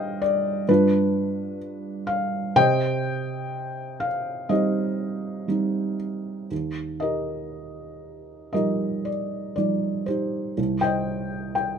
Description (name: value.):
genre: classical, lyrical solo piano.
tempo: 57-65 BPM.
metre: 4/4.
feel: rubato.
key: C minor, Eb major from 6.5 s.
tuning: A4 = 440 Hz.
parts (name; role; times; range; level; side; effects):
felt-muted upright piano; solo; 0.0-11.8 s; C2 to G5; -23 LUFS; equal; none.
room: light reverb.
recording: none.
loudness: -22 LUFS.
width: side -7 dB against mid.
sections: 0.0-6.5 A section; 6.5-11.8 B section.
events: none.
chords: 0.0 Gsus4; 0.7 G7; 2.6 Cm; 6.5 Ebadd9; 10.6 Cm.